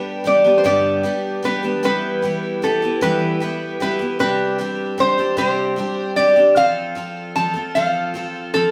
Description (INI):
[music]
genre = acoustic folk duo or small band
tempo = 51 BPM (dotted quarters)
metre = 6/8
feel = straight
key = unclear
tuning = A4 = 440 Hz
[part]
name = lap resonator guitar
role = second line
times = 0.0-8.7 s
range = A4 to A5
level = -20 LUFS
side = equal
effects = none
[part]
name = picked twelve-string acoustic guitar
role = accompaniment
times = 0.0-8.7 s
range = G2 to A4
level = -24 LUFS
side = equal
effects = none
[sound]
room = wet small room reverb, RT60 0.6 s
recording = band playing live in one room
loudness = -19 LUFS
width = mono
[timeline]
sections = 0.0-8.7 A section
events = resonator guitar played with a steel bar solo 0.0-8.7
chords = 0.0 G; 1.8 Em; 4.2 Csus2; 6.6 F